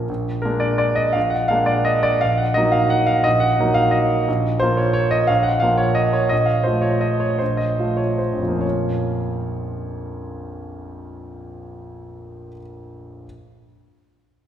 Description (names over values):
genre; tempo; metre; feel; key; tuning
classical, piano waltz; 133-187 BPM; 3/4; rubato; Bb minor; A4 = 441 Hz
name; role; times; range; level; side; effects
clear concert grand piano; solo; 0.0-13.3 s; Bb1 to Gb5; -18 LUFS; right 1 dB; none
room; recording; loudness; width
wet scoring stage reverb, RT60 1.9 s; heard from further back in the room; -17 LUFS; side -9 dB against mid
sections
0.1-8.6 A section; 8.6-11.1 B section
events
slowing down 5.8-8.6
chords
0.1 Bb7; 2.2 Ebm/Bb; 4.3 Bb5; 6.3 F7/Bb; 8.6 Bbm